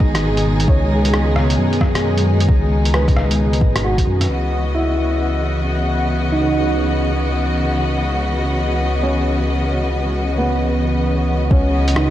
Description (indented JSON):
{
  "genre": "future garage",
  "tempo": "133 BPM",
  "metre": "4/4",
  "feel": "swing 63% on 16ths",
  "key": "C# minor",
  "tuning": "A4 = 439 Hz",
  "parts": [
    { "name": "dark upright piano", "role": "accompaniment", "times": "0.0-12.1 s", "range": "B3 to D#5", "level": "-24 LUFS", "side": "right 2 dB", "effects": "sidechain pumping, tape echo" },
    { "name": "rich symphonic string section", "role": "sustained chords", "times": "0.0-12.1 s", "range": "B2 to D#5", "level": "-20 LUFS", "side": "left 1 dB", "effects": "vintage 12-bit sampler grit, sidechain pumping" },
    { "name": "dark detuned saw bass", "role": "bass", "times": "0.0-12.1 s", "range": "G#1 to F#2", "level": "-19 LUFS", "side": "equal", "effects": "tube saturation, sidechain pumping" },
    { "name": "electronic kick drum", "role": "drums", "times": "0.0-4.0, 11.5-11.6 s", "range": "none", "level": "-16 LUFS", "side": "equal", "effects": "none" },
    { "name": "drifting glass-harmonics texture", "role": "texture", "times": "0.0-11.5 s", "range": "D#5 to F#5", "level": "-31 LUFS", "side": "left 2 dB", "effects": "chorus, built-in reverb" },
    { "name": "lo-fi sampler-style drum kit", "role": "drums", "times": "0.1-4.3, 11.9-12.1 s", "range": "hi-hat, rim click", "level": "-23 LUFS", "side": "equal", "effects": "none" }
  ],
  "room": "light reverb",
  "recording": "none",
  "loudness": "-15 LUFS",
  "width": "side -13 dB against mid",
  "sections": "0.0-4.3 A section; 4.3-11.5 B section",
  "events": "none",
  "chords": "0.0 G#m; 4.3 C#m11",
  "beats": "0.23 | 0.68 1.13 1.58 2.04 | 2.49 2.94 3.39 3.84 | 4.29 4.74 5.19 5.64 | 6.09 6.55 7.00 7.45 | 7.90 8.35 8.80 9.25 | 9.70 10.15 10.61 11.06 | 11.51 11.96"
}